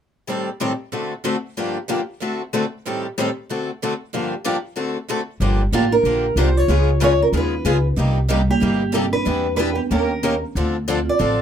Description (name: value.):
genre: acoustic string swing (jazz manouche).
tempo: 187 BPM.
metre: 4/4.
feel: swing 58% on 8ths.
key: unclear.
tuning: A4 = 441 Hz.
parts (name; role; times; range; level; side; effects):
picked steel-string acoustic guitar; accompaniment; 0.3-11.4 s; G2 to Bb4; -24 LUFS; left 4 dB; none.
picked swing-style acoustic guitar; accompaniment; 0.3-11.4 s; G2 to B4; -28 LUFS; right 6 dB; none.
upright bass; bass; 5.4-11.4 s; G1 to E2; -20 LUFS; equal; none.
picked old ladder-braced acoustic guitar; melody; 5.7-11.4 s; Eb4 to D5; -21 LUFS; equal; none.
marimba with soft mallets; second line; 5.7-11.4 s; G3 to F4; -24 LUFS; right 5 dB; none.
room: light reverb.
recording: none.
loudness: -18 LUFS.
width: side -9 dB against mid.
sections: 0.3-5.4 A section; 5.4-11.4 B section.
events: none.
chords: 0.3 Am7b5; 0.9 D7; 1.6 Gm7; 2.2 D7; 2.9 Am7b5; 3.5 D7; 4.1 Gm7; 4.8 D7; 5.4 Gm7; 6.7 C#9; 8.0 Cm7; 9.3 Em7; 9.9 Eb7; 10.5 Dm7.